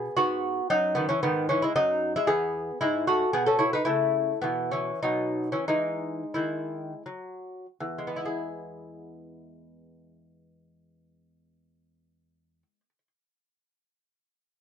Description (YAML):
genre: classical, baroque-style dance for lute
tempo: 79-115 BPM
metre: 3/4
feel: rubato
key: E major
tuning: A4 = 439 Hz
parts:
  - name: lute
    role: solo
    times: 0.0-13.1 s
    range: E2 to C#5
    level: -25 LUFS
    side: equal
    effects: none
room: light reverb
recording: dry, close 1970s-style studio recording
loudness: -24 LUFS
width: side -8 dB against mid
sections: 0.0-7.8 A section; 7.8-12.2 B section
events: slowing down 3.1-7.8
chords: 0.0 B5; 0.7 F#13sus4; 2.3 E; 3.9 A/C#; 4.4 E5/B; 5.0 B; 5.7 E